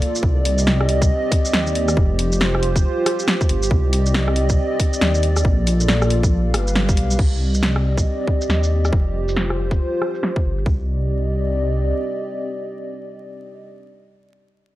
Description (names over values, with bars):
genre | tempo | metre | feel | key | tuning
future garage | 138 BPM | 4/4 | swing 62% on 16ths | C dorian | A4 = 440 Hz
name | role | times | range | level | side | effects
dark analog pad | sustained chords | 0.0-13.7 s | G3 to F5 | -23 LUFS | equal | chorus, sidechain pumping
garage drum kit | drums | 0.0-10.6 s | crash cymbal, hi-hat, rim click, shaker, snare drum | -22 LUFS | equal | low-pass filter on hats, studio reverb, low-pass filter on perc, low-pass filter on snare, low-pass filter on cymbals
dark detuned saw bass | bass | 0.2-11.9 s | F1 to Eb2 | -19 LUFS | equal | transformer saturation
electronic kick drum | drums | 0.2-10.8 s | none | -18 LUFS | equal | studio reverb
room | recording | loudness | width
light reverb | dry, gritty hardware recording, vinyl crackle | -16 LUFS | side -16 dB against mid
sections
0.0-7.2 A section; 7.2-10.7 B section; 10.7-14.1 C section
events
band accent 6.8; filter sweep on drum 7.2-10.7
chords
0.2 Cmadd9; 2.0 Fsus2; 3.7 Cmadd9; 5.5 Bbmaj7; 6.3 G7; 7.2 Cmadd9; 8.9 Fsus2; 10.7 Cmadd9